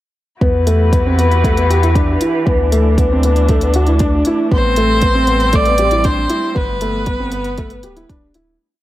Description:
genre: piano and strings electronica.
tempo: 117 BPM.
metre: 4/4.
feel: straight.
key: E minor.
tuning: A4 = 440 Hz.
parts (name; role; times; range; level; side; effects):
muted string quartet; sustained chords; 0.4-8.6 s; E3 to B4; -21 LUFS; equal; none.
dark concert grand piano; riff; 0.4-8.6 s; A3 to G4; -18 LUFS; left 1 dB; digital delay.
warm sub bass; bass; 0.4-8.6 s; D1 to E2; -16 LUFS; equal; sidechain pumping.
electronic kick drum; drums; 0.4-8.2 s; none; -17 LUFS; equal; none.
electronic hi-hat; drums; 0.7-8.5 s; none; -29 LUFS; equal; none.
clear viola; melody; 4.5-8.1 s; B4 to D5; -17 LUFS; right 1 dB; none.
room: light reverb.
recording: none.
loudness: -12 LUFS.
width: side -15 dB against mid.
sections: 0.4-8.6 drop.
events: drop 0.4-8.6; fade-out 5.9-8.6.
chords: 0.4 Emadd9; 2.5 Dsus2; 4.5 Am7; 6.6 Gadd9.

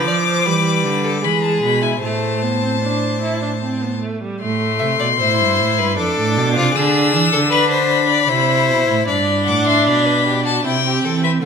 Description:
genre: classical, baroque-style fugue for string quartet.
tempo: 77 BPM.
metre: 3/4.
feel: straight.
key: A minor.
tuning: A4 = 440 Hz.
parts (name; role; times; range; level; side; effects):
rich violin; melody; 0.0-11.5 s; E5 to E6; -19 LUFS; left 9 dB; none.
clear violin; second line; 0.0-11.5 s; E4 to F#5; -21 LUFS; left 3 dB; none.
rich viola; accompaniment; 0.0-11.5 s; F3 to E4; -20 LUFS; right 1 dB; none.
rich cello; bass; 0.0-11.5 s; F2 to F3; -21 LUFS; right 5 dB; none.
room: wet recital hall reverb, RT60 1.4 s.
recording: minimal, uncompressed stereo recording.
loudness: -14 LUFS.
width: side -6 dB against mid.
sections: 0.0-4.4 A section; 4.4-9.1 B section; 9.1-11.5 C section.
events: none.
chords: 0.0 Bdim; 1.2 E; 2.0 Am; 6.0 Dm/F; 6.8 E7/D; 8.3 Am/C; 9.1 G; 10.6 C.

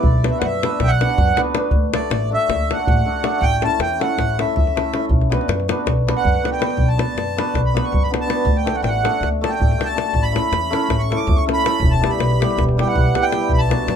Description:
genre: balkan folk, Balkan wedding band.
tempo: 321 BPM (eighths).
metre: 9/8.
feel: straight.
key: B minor.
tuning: A4 = 440 Hz.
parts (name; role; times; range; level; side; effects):
accordion; second line; 0.0-14.0 s; D5 to D6; -22 LUFS; right 3 dB; none.
upright bass; bass; 0.0-14.0 s; E1 to F#2; -21 LUFS; equal; none.
davul; percussion; 0.0-14.0 s; none; -21 LUFS; equal; none.
hammered dulcimer; accompaniment; 0.2-14.0 s; F#3 to B4; -22 LUFS; left 2 dB; none.
room: light reverb.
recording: none.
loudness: -16 LUFS.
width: side -8 dB against mid.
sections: 0.0-14.0 A section.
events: accordion solo 0.0-14.0.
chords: 0.0 Bm; 1.7 D; 3.4 A; 5.1 Bm; 8.5 D; 10.1 A; 11.8 Em.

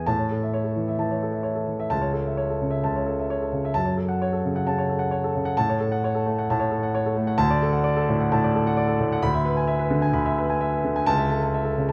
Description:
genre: classical, virtuoso piano study.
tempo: 131 BPM.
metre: 4/4.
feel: rubato.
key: A major.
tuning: A4 = 440 Hz.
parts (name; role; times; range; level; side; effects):
warm concert grand piano; solo; 0.0-11.9 s; C#2 to B5; -24 LUFS; equal; none.
room: wet recital hall reverb, RT60 1.6 s.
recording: none.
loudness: -24 LUFS.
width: mono.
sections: 0.1-11.9 A section.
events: none.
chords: 0.1 A; 1.9 A/C#; 3.8 F#m; 5.6 F#m/A; 7.4 D; 9.2 E7/D; 11.1 A/C#.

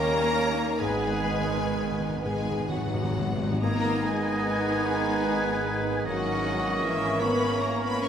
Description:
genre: classical, slow romantic movement for symphony orchestra.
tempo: 41-53 BPM (dotted quarters).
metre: 6/8.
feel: rubato.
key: G# minor.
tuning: A4 = 441 Hz.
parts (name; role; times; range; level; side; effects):
warm studio violin section; melody; 0.0-8.1 s; E5 to C#6; -34 LUFS; left 2 dB; none.
mellow hollow flute section; second line; 0.0-8.1 s; B4 to G#6; -34 LUFS; equal; none.
warm oboe; second line; 0.0-8.1 s; G#4 to D#5; -35 LUFS; right 1 dB; none.
warm studio violin section; second line; 0.0-8.1 s; G3 to C#5; -37 LUFS; left 4 dB; none.
clear studio viola section; accompaniment; 0.0-8.1 s; A#3 to B4; -35 LUFS; right 1 dB; none.
clear trombone section; sustained chords; 0.0-8.1 s; D#3 to D#4; -34 LUFS; right 3 dB; none.
mellow French horn section; sustained chords; 0.0-8.1 s; E3 to C#4; -33 LUFS; left 3 dB; none.
concert harp; arpeggios; 0.0-8.1 s; G#2 to E5; -36 LUFS; left 4 dB; none.
warm trumpet section; stabs; 0.0-8.1 s; G#4 to B4; -36 LUFS; equal; none.
rich studio cello section; bass; 0.0-8.1 s; E3 to C#4; -35 LUFS; right 6 dB; none.
warm studio double bass section; bass; 0.0-8.1 s; G#1 to D#2; -35 LUFS; right 3 dB; none.
timpani; percussion; 0.8-3.6 s; G#2; -31 LUFS; left 1 dB; none.
dark bassoon; accompaniment; 3.6-8.1 s; A#3 to B3; -34 LUFS; right 2 dB; none.
room: wet scoring stage reverb, RT60 1.8 s.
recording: none.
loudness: -24 LUFS.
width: side -8 dB against mid.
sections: 0.0-3.6 A section; 3.6-8.1 B section.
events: timpani fill 0.8-3.6.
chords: 0.0 D#7; 0.8 G#m; 6.1 A#m7b5/G#.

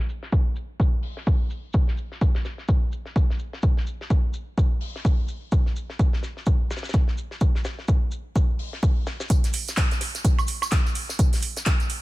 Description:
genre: house.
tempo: 127 BPM.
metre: 4/4.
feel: swing 59% on 16ths.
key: none.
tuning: none.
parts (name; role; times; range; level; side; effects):
damped 70s drum kit; drums; 0.1-12.0 s; hi-hat, shaker, snare drum; -37 LUFS; left 2 dB; high-pass filter on hats, low-pass filter on hats, small room ambience, high-pass filter on snare, low-pass filter on snare, high-pass filter on perc, low-pass filter on perc, high-pass filter on room, low-pass filter on room.
electronic kick drum; drums; 0.3-11.8 s; none; -21 LUFS; equal; small room ambience.
house drum kit; drums; 9.3-12.0 s; handclaps, hi-hat, tambourine, woodblock; -27 LUFS; right 3 dB; small room ambience.
room: studio ambience.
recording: low-pass filter.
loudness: -22 LUFS.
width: side -19 dB against mid.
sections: 0.0-9.3 A section; 9.3-12.0 B section.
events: filter sweep 0.0-9.3; drop 9.3-12.0.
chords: none.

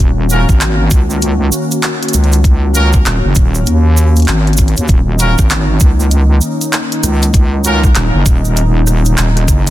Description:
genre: glitch hop.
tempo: 98 BPM.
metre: 4/4.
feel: swing 62% on 16ths.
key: Eb minor.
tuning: A4 = 440 Hz.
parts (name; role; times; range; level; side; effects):
warm analog pad; sustained chords; 0.0-9.7 s; Eb3 to Gb4; -19 LUFS; left 1 dB; wide subtle chorus, sidechain pumping.
wobble bass; bass; 0.0-9.7 s; Eb1 to Eb2; -11 LUFS; equal; chorus, overdrive.
pop drum kit; drums; 0.0-9.7 s; handclaps, hi-hat, rim click; -19 LUFS; equal; overdrive.
brilliant horn section; stabs; 0.3-7.8 s; Db4 to Bb4; -20 LUFS; equal; sidechain pumping, tape echo.
cabasa; percussion; 0.3-9.7 s; none; -22 LUFS; right 4 dB; none.
electronic kick drum; drums; 0.5-9.6 s; none; -10 LUFS; equal; overdrive.
room: digital ambience.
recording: dense, heavily limited modern master.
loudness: -9 LUFS.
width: side -14 dB against mid.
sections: 0.0-9.7 A section.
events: none.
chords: 0.0 Ebm7.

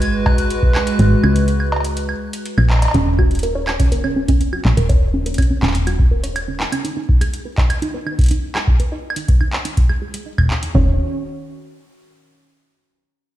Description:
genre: IDM.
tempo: 123 BPM.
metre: 4/4.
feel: straight.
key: Eb minor.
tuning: A4 = 440 Hz.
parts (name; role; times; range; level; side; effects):
soft struck synth lead; melody; 0.0-2.4 s; Gb6 to Ab6; -29 LUFS; left 2 dB; chorus, tremolo, ping-pong delay.
hollow soft pad; sustained chords; 0.0-2.9, 10.7-11.0 s; Eb3 to Cb5; -22 LUFS; right 1 dB; chorus.
woody FM bass; bass; 0.0-6.7, 10.7-11.0 s; Eb1 to Db2; -18 LUFS; equal; none.
electro analog drum machine; drums; 0.0-10.7 s; cowbell, handclaps, hi-hat, woodblock; -25 LUFS; right 1 dB; studio ambience, ping-pong delay.
electro analog drum machine; drums; 0.3-10.9 s; kick drum, toms; -15 LUFS; equal; studio ambience.
warbly dusty pluck; arpeggios; 2.9-11.0 s; Db4 to Ab5; -24 LUFS; right 2 dB; chorus, cassette tape, ping-pong delay.
room: light reverb, digital ambience.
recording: played on a big sound system in a bare room, stone room reverb.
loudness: -15 LUFS.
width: side -14 dB against mid.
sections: 0.0-2.9 A section; 2.9-10.7 B section; 10.7-12.7 C section.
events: kick drops out 1.0-2.9; band accent 2.7.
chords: 0.0 Abm7; 2.9 Ebm7; 6.8 Ebsus4; 10.7 Ebm7.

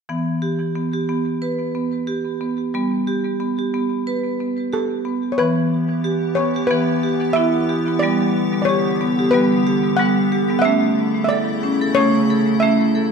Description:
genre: world meditative, meditative tuned percussion.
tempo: 91 BPM.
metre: 4/4.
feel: swing 55% on 16ths.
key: E dorian.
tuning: A4 = 440 Hz.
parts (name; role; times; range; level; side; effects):
marimba with hard mallets; arpeggios; 0.1-13.1 s; E3 to B4; -18 LUFS; right 1 dB; tape echo.
steel pan; melody; 4.7-13.1 s; A4 to F#5; -22 LUFS; equal; none.
icy glass pad; sustained chords; 5.8-13.1 s; C#3 to G4; -24 LUFS; left 2 dB; chorus, built-in reverb.
room: wet echo chamber reverb, RT60 2.3 s.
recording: none.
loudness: -17 LUFS.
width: side -6 dB against mid.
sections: 0.1-5.4 A section; 5.4-13.1 B section.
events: none.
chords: 0.1 Em; 2.7 G; 5.4 Em; 8.0 G; 10.7 A.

